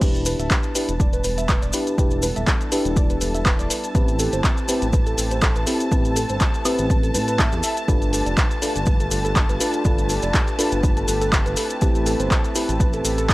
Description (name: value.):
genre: deep house.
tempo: 122 BPM.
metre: 4/4.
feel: swing 55% on 16ths.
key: A minor.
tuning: A4 = 440 Hz.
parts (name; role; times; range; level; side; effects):
warm analog pad; sustained chords; 0.0-13.3 s; G3 to B4; -30 LUFS; equal; chorus, sidechain pumping.
warbly dusty pluck; arpeggios; 0.0-13.3 s; G4 to E5; -30 LUFS; right 2 dB; chorus, sidechain pumping, tape echo.
mellow FM electric piano; stabs; 0.0-12.7 s; C4 to B4; -26 LUFS; equal; chorus, sidechain pumping, analog delay.
smooth gliding synth bass; bass; 0.0-13.3 s; D1 to A2; -26 LUFS; equal; sidechain pumping.
electronic kick drum; drums; 0.0-13.3 s; none; -20 LUFS; equal; none.
punchy analog drum machine; drums; 0.0-13.3 s; crash cymbal, handclaps, hi-hat, woodblock; -26 LUFS; equal; none.
maracas; percussion; 0.0-13.3 s; none; -29 LUFS; left 1 dB; none.
dark symphonic violin section; texture; 0.0-13.3 s; A5; -31 LUFS; left 2 dB; sidechain pumping.
room: digital ambience.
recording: dry, gritty hardware recording.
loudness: -18 LUFS.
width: side -19 dB against mid.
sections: 0.0-13.3 A section.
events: none.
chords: 0.0 Em7; 3.9 Am9; 7.9 G9; 11.6 Am9.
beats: | 0.01 0.51 1.00 1.49 | 1.98 2.47 2.96 3.46 | 3.95 4.44 4.93 5.42 | 5.92 6.41 6.90 7.39 | 7.88 8.38 8.87 9.36 | 9.85 10.34 10.83 11.33 | 11.82 12.31 12.80 13.29.